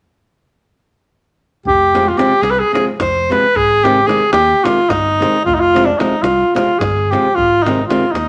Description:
balkan folk, Balkan wedding band; 220 BPM (eighths); 7/8; straight; F minor; A4 = 442 Hz
clear alto saxophone; melody; 1.7-8.3 s; D4 to C5; -15 LUFS; equal
fingered electric bass; bass; 1.7-8.3 s; F1 to Eb2; -26 LUFS; equal
davul; percussion; 1.7-8.3 s; -26 LUFS; equal
flamenco guitar; accompaniment; 1.9-8.0 s; C3 to C4; -22 LUFS; equal
moderate studio reverb, RT60 0.9 s; -14 LUFS; mono
1.7-8.3 A section
1.7 Fm; 3.6 Ab; 5.5 Fm; 7.4 Ab

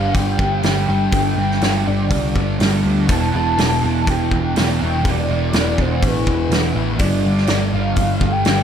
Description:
rock, shoegaze and dream pop; 123 BPM; 4/4; straight; G mixolydian; A4 = 440 Hz
warm velvety synth lead; melody; 0.0-8.6 s; B4 to A5; -24 LUFS; left 1 dB; chorus, tape echo
fuzz guitar; riff; 0.0-8.6 s; E2 to G3; -19 LUFS; right 1 dB; distortion, lush chorus
vintage muted picked electric bass; bass; 0.0-8.6 s; E1 to D2; -21 LUFS; equal
loose indie drum kit; drums; 0.1-8.6 s; hi-hat, kick drum, snare drum; -21 LUFS; equal
light reverb; -15 LUFS; side -8 dB against mid
0.0-8.6 A section
0.0 G5; 3.1 Em; 7.0 G5

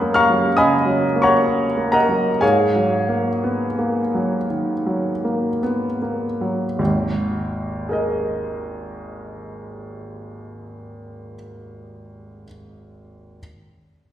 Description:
classical, impressionist solo piano; 50-73 BPM; 4/4; rubato; G# dorian; A4 = 443 Hz
clear baby grand piano; solo; 0.0-13.4 s; G#1 to F#6; -19 LUFS; equal
wet recital hall reverb, RT60 1.7 s; recorded in a church or concert hall; -17 LUFS; side -11 dB against mid
0.0-6.8 A section; 6.8-11.2 B section
slowing down 0.0-6.8
0.0 G#m6/F#; 2.4 G#m9; 6.8 G#sus2

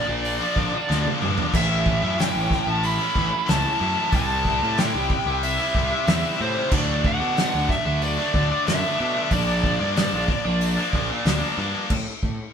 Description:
quiet-loud alternative rock; 93 BPM; 4/4; straight; A4 = 442 Hz
smooth overdriven lead guitar; melody; 0.0-11.5 s; C5 to B5; -25 LUFS; right 1 dB
high-gain distorted guitar; riff; 0.0-11.9 s; A2 to E4; -29 LUFS; right 5 dB; distortion
scooped high-gain guitar; riff; 0.0-11.9 s; A2 to E4; -26 LUFS; left 8 dB; distortion
fuzz picked electric bass; bass; 0.1-12.4 s; A1 to B2; -26 LUFS; equal; overdrive
loose indie drum kit; drums; 0.2-12.4 s; crash cymbal, hi-hat, kick drum, snare drum, splash cymbal, toms; -25 LUFS; right 1 dB
moderate studio reverb, RT60 0.8 s; band playing live in one room; -20 LUFS; side -7 dB against mid
0.0-11.9 A section
drum fill 0.9-1.5
0.0 Bb; 1.5 A; 4.1 C; 6.7 D; 9.3 Bb; 11.9 N.C.

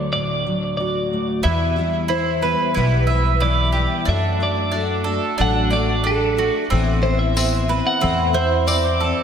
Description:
indie folk with a building arrangement; 91 BPM; 4/4; straight; D mixolydian; A4 = 440 Hz
twelve-string electric guitar; melody; 0.0-9.2 s; A4 to F#5; -22 LUFS; right 1 dB; harmonic tremolo, diffuse ambient delay
fingerpicked steel-string acoustic guitar; accompaniment; 0.0-1.5 s; D2 to F#4; -24 LUFS; left 1 dB; analog chorus
picked twelve-string acoustic guitar; accompaniment; 1.4-9.2 s; E2 to F#4; -24 LUFS; left 7 dB; analog chorus
bowl-back mandolin; arpeggios; 1.4-9.2 s; C4 to E5; -23 LUFS; right 6 dB; diffuse ambient delay
upright bass; bass; 1.4-9.1 s; A1 to F#2; -21 LUFS; equal
tambourine; percussion; 7.4-8.8 s; -28 LUFS; left 8 dB
wet lush hall reverb, RT60 2.8 s; dreamy mix soaked in reverb; -17 LUFS; side -8 dB against mid
0.0-1.4 A section; 1.4-9.2 B section
0.0 D; 1.4 Em; 4.1 D/F#; 6.7 Amadd9

